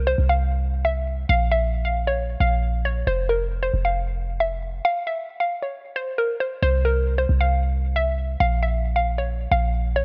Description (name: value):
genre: hip hop, trap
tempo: 135 BPM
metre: 4/4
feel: half-time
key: unclear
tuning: A4 = 440 Hz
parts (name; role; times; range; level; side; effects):
- hollow square pluck; melody; 0.0-10.0 s; Bb4 to F5; -26 LUFS; equal; chorus, low-pass filter
- clean 808-style bass; bass; 0.0-10.0 s; F1 to C2; -24 LUFS; equal; none
room: little or no reverb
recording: none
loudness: -23 LUFS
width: mono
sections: 0.0-6.6 A section; 6.6-10.0 B section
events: none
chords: 0.0 Csus4; 1.3 Bb5; 3.1 N.C.; 6.6 Csus4; 8.4 Bb5